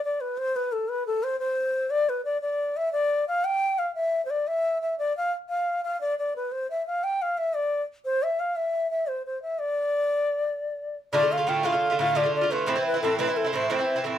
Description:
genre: celtic folk, Celtic slip jig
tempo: 117 BPM (dotted quarters)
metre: 9/8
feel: straight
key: D dorian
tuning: A4 = 440 Hz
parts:
  - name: bright reedy bass bansuri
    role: melody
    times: 0.0-14.0 s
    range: A4 to G5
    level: -24 LUFS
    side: left 1 dB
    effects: none
  - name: Irish bouzouki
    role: accompaniment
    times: 11.1-14.2 s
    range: A2 to F4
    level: -25 LUFS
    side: right 3 dB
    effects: none
room: moderate studio ambience, RT60 0.5 s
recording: none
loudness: -24 LUFS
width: side -11 dB against mid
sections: 0.0-11.1 A section; 11.1-14.2 A section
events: none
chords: 0.0 N.C.; 11.1 Dm; 12.7 Am

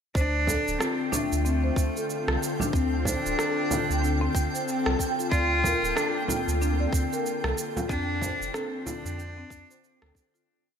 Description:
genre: organic downtempo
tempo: 93 BPM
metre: 4/4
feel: swing 59% on 16ths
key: D minor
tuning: A4 = 440 Hz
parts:
  - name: ethereal airy pad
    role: sustained chords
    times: 0.7-10.5 s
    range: D3 to A4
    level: -34 LUFS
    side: left 3 dB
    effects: ensemble chorus, built-in reverb, sidechain pumping
  - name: warm sub bass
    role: bass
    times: 0.1-10.1 s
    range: D1 to F2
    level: -29 LUFS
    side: right 1 dB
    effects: tube saturation, sidechain pumping
  - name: electronic kick drum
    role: drums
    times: 0.1-10.3 s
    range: none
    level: -28 LUFS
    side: equal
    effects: none
  - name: twinkling granular texture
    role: texture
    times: 0.9-10.5 s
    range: G5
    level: -36 LUFS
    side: right 3 dB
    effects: built-in reverb, lush chorus
  - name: rich cello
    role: melody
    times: 0.2-10.2 s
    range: A3 to F4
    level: -29 LUFS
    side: left 1 dB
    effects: ping-pong delay
  - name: marimba with soft mallets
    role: arpeggios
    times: 0.2-10.5 s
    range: C4 to D5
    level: -32 LUFS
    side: left 2 dB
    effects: digital delay
  - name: electronic shaker and rim click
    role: drums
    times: 0.2-10.5 s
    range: none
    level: -33 LUFS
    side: right 2 dB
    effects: gated reverb
  - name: frame drum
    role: percussion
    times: 0.5-9.0 s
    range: none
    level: -35 LUFS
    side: right 3 dB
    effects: none
room: moderate lush hall reverb, RT60 2.8 s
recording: bright 1980s-style digital production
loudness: -24 LUFS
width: side -7 dB against mid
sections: 0.2-10.5 groove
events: fade-out 7.0-10.5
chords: 0.2 Dm7; 5.3 Bbmaj7/D; 7.9 F6

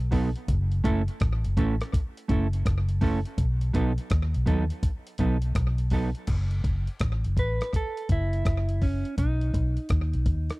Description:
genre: roots reggae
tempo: 83 BPM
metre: 4/4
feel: swing 65% on 16ths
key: F# dorian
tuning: A4 = 441 Hz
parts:
  - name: vintage muted fingered electric bass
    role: bass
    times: 0.0-10.5 s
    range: F#1 to D#2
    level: -26 LUFS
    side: equal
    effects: none
  - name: mellow electric guitar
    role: accompaniment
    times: 0.1-10.6 s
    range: F#3 to B4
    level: -30 LUFS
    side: right 2 dB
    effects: dub echo
  - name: dusty soul sampler-style drum kit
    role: drums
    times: 0.1-10.6 s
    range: crash cymbal, hi-hat, kick drum, rim click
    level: -26 LUFS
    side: equal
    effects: none
room: little or no reverb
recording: dry, close 1970s-style studio recording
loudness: -24 LUFS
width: side -22 dB against mid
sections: 0.0-6.3 A section; 6.3-10.6 B section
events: clean electric guitar solo 6.3-10.6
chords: 0.5 F#m7; 3.4 B7; 6.3 F#m7; 9.2 B

